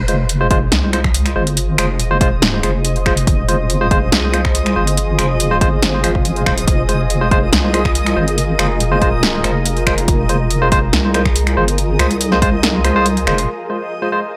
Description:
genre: deep dubstep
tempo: 141 BPM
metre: 4/4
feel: half-time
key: F minor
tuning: A4 = 440 Hz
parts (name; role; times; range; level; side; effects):
- granular cloud pad; sustained chords; 1.2-14.4 s; F4 to G5; -26 LUFS; equal; built-in reverb
- deep soft wobble bass; bass; 0.0-13.5 s; Eb1 to C2; -20 LUFS; equal; chorus
- backwards swelling texture; texture; 0.8-14.4 s; Ab4 to Eb5; -28 LUFS; equal; built-in reverb
- barky tine electric piano; stabs; 0.1-14.2 s; Ab3 to C5; -22 LUFS; equal; dub echo
- deep house drum kit; drums; 0.1-13.5 s; finger snaps, hi-hat, snare drum; -21 LUFS; equal; overdrive
- electronic kick drum; drums; 0.5-12.5 s; none; -19 LUFS; equal; overdrive
room: light reverb, digital ambience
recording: none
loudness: -15 LUFS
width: mono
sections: 0.0-13.5 A section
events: kick drops out 12.6-13.5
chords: 0.0 Fm

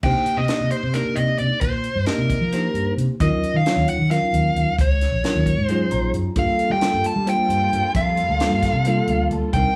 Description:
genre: electric jazz fusion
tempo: 266 BPM (eighths)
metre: 7/8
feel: straight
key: C minor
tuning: A4 = 439 Hz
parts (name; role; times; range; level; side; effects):
- dark smooth lead guitar; melody; 0.0-9.8 s; Bb4 to A5; -25 LUFS; equal; overdrive
- bell-like tine electric piano; accompaniment; 0.0-9.8 s; Gb3 to Bb5; -27 LUFS; equal; none
- fretless electric bass; bass; 0.0-9.6 s; Bb1 to G3; -24 LUFS; equal; none
- tight funk drum kit; drums; 0.0-9.6 s; crash cymbal, hi-hat, kick drum, snare drum; -28 LUFS; equal; none
- muted studio string section; sustained chords; 6.4-9.8 s; C3 to A4; -35 LUFS; equal; none
room: moderate studio reverb, RT60 0.5 s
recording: band playing live in one room, small room ambience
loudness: -20 LUFS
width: mono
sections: 0.0-9.8 A section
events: tine electric piano fill 5.7-6.4, 8.9-9.5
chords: 0.0 Cm9; 3.2 Ebm9; 6.4 Gm9

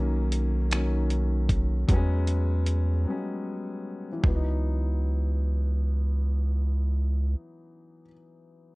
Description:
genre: slow six-eight R&B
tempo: 51 BPM (dotted quarters)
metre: 6/8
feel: straight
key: C# dorian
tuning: A4 = 440 Hz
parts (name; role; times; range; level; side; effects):
- warm concert grand piano; accompaniment; 0.0-8.8 s; D#3 to D#4; -33 LUFS; left 2 dB; plate reverb
- rubbery square bass; bass; 0.0-7.4 s; B1 to E2; -24 LUFS; equal; none
- dusty soul sampler-style drum kit; drums; 0.3-4.4 s; finger snaps, hi-hat, kick drum, toms; -25 LUFS; equal; none
room: little or no reverb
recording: worn, warbling old tape, cassette tape, warbly pitch drift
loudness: -24 LUFS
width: side -24 dB against mid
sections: 0.0-4.2 A section; 4.2-6.6 B section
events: break 3.1-4.2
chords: 0.0 Bmaj9; 1.9 E6; 4.2 C#m11

